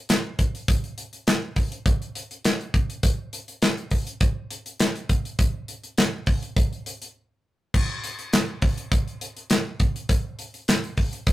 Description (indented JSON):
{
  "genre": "funk",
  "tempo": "102 BPM",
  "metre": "4/4",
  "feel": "straight",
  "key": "none",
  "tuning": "none",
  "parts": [
    { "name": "modern studio drum kit", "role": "drums", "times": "0.1-11.3 s", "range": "crash cymbal, handclaps, hi-hat, kick drum, snare drum", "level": "-22 LUFS", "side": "equal", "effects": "none" }
  ],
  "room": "moderate studio ambience, RT60 0.5 s",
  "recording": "rough rehearsal-room recording, tube saturation",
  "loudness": "-22 LUFS",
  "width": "side -16 dB against mid",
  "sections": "0.0-7.7 A section; 7.7-11.3 B section",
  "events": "break 7.2-7.7",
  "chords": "none"
}